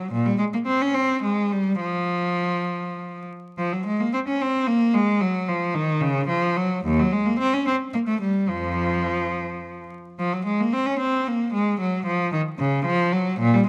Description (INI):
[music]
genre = classical, baroque-style suite movement for unaccompanied cello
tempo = 65-77 BPM (dotted quarters)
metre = 6/8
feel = rubato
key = F minor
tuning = A4 = 440 Hz
[part]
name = rich cello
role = solo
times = 0.0-13.7 s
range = Eb2 to Db4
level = -23 LUFS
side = equal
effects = none
[sound]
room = moderate recital hall reverb, RT60 1.5 s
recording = close, detailed microphones, vinyl crackle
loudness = -23 LUFS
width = mono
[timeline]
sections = 0.0-3.6 A section; 3.6-13.7 A section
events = none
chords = none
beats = | 0.11 0.94 | 1.81 2.68 | 3.58 4.41 | 5.22 6.02 | 6.85 7.67 | 8.50 9.33 | 10.18 11.01 | 11.81 12.60 | 13.40